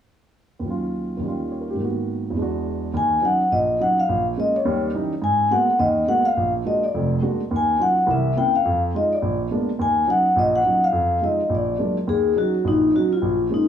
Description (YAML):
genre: jazz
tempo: 210 BPM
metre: 4/4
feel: swing 59% on 8ths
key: Eb minor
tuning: A4 = 440 Hz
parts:
  - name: warm grand piano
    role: accompaniment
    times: 0.6-13.7 s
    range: F1 to Db5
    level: -23 LUFS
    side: right 2 dB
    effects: none
  - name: vibraphone with soft mallets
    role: melody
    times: 3.0-13.6 s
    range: Eb4 to Ab5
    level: -19 LUFS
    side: left 2 dB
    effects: plate reverb
room: wet studio reverb, RT60 0.8 s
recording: heard from further back in the room, small room ambience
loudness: -18 LUFS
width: side -9 dB against mid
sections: 0.6-2.9 A section; 2.9-12.1 B section; 12.1-13.7 B section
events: none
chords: 0.6 Ebm7; 1.2 Eb7; 1.8 Abm7; 2.4 E9; 2.9 Ebm7; 4.1 Bbm7; 4.6 Eb7b9; 5.2 Abm9; 6.4 Bb7b13; 7.5 Ebm9; 8.1 C7b9; 8.6 Fm7; 9.2 Bb7b9; 9.8 Ebm7; 10.9 Fm7; 11.5 Bb7b13; 12.1 Ebm7